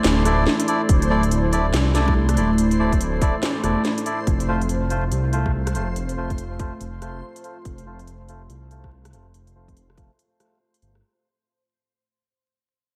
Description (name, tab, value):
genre	deep dubstep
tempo	142 BPM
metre	4/4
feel	swing 62% on 16ths, half-time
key	unclear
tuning	A4 = 440 Hz
part	deep dark ambient pad	sustained chords	0.0-11.0 s	A3 to D5	-28 LUFS	equal	chorus, built-in reverb
part	dark detuned saw bass	bass	0.0-11.0 s	D1 to C2	-26 LUFS	equal	none
part	garage drum kit	drums	0.0-11.0 s	hi-hat, rim click, snare drum	-28 LUFS	equal	none
part	backwards swelling texture	texture	0.0-11.0 s	C5	-37 LUFS	equal	built-in reverb
part	melodica	stabs	0.3-11.0 s	A3 to D5	-29 LUFS	equal	low-pass filter, dub echo
part	electronic kick drum	drums	0.9-10.1 s	none	-24 LUFS	equal	none
room	moderate plate reverb, RT60 1.8 s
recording	dreamy mix soaked in reverb, vinyl crackle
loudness	-21 LUFS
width	mono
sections	0.0-11.0 A section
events	fade-out 0.0-11.0; filter sweep on melodica 0.0-11.0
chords	0.0 Dsus2; 4.3 F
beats	0.04 0.47 | 0.89 1.31 1.74 2.16 | 2.58 3.00 3.42 3.85 | 4.27 4.69 5.12 5.54 | 5.96 6.38 6.81 7.23 | 7.65 8.07 8.50 8.92 | 9.34 9.76 10.19 10.61